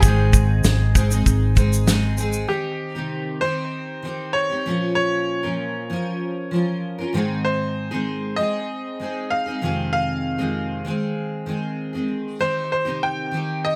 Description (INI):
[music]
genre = acoustic pop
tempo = 97 BPM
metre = 4/4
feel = straight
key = Ab major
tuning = A4 = 440 Hz
[part]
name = bright upright piano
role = melody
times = 0.0-13.8 s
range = G4 to G5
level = -28 LUFS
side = equal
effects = digital delay
[part]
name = fingerpicked steel-string acoustic guitar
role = accompaniment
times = 0.0-13.8 s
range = F2 to Bb4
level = -27 LUFS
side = equal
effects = double-tracked
[part]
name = vintage muted fingered electric bass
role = bass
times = 0.0-2.5 s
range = Ab1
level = -21 LUFS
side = equal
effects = none
[part]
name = loose indie drum kit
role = drums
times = 0.0-2.5 s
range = kick drum, shaker, snare drum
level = -20 LUFS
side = equal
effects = none
[sound]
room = light reverb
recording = none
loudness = -22 LUFS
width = mono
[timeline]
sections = 0.0-2.5 A section; 2.5-13.8 B section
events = none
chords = 0.0 Ab; 2.5 Cm; 4.7 Bbm; 7.1 Ab; 9.6 Fm7; 12.4 Cm